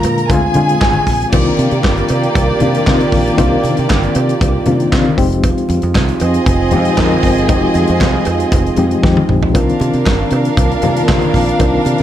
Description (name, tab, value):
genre	disco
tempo	117 BPM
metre	4/4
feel	straight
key	C minor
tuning	A4 = 440 Hz
part	warm studio violin section	second line	0.0-12.0 s	Bb3 to Bb5	-17 LUFS	right 2 dB	none
part	reed electric piano	accompaniment	0.0-12.0 s	D3 to Bb4	-17 LUFS	left 4 dB	fast tremolo
part	mellow French horn section	sustained chords	0.0-12.0 s	D3 to F4	-22 LUFS	right 4 dB	stereo widening
part	fingered electric bass	bass	0.0-12.0 s	F1 to D3	-17 LUFS	equal	none
part	modern studio drum kit	drums	0.0-12.0 s	crash cymbal, handclaps, hi-hat, kick drum, snare drum, toms	-16 LUFS	equal	none
part	congas	percussion	0.0-12.0 s	none	-25 LUFS	left 3 dB	none
part	cowbell	percussion	0.0-11.7 s	none	-28 LUFS	right 6 dB	none
room	light reverb, studio reverb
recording	dark, warm production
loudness	-11 LUFS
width	side -11 dB against mid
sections	0.0-1.3 A section; 1.3-12.0 B section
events	drum fill 9.0-9.5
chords	0.3 Dm7b5; 1.3 Cm11; 5.2 Fm9; 9.5 Cm11